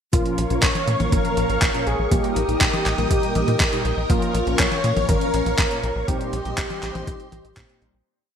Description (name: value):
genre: italo disco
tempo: 121 BPM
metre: 4/4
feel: straight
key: Bb dorian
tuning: A4 = 441 Hz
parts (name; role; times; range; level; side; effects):
- wide unison lead; melody; 0.1-7.8 s; F4 to Db5; -26 LUFS; equal; cassette tape, ping-pong delay
- string machine, full ensemble; sustained chords; 0.1-8.0 s; G4 to Eb6; -27 LUFS; equal; ensemble chorus
- mellow synth brass; stabs; 0.1-8.0 s; Bb2 to C5; -27 LUFS; left 1 dB; chorus
- tight sequencer bass; bass; 0.1-8.0 s; Ab1 to Bb2; -25 LUFS; equal; tube saturation
- dusty soul sampler-style drum kit; drums; 0.1-7.9 s; handclaps, hi-hat, toms; -24 LUFS; left 1 dB; overdrive, gated reverb
- electronic kick drum; drums; 0.1-7.7 s; none; -23 LUFS; equal; overdrive
room: moderate lush hall reverb, RT60 2.1 s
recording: bright 1980s-style digital production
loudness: -18 LUFS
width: side -8 dB against mid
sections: 0.1-8.1 verse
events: fade-out 5.4-8.1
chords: 0.1 Bbm; 2.1 Eb/Bb; 4.1 Bbm; 6.1 Cm/Bb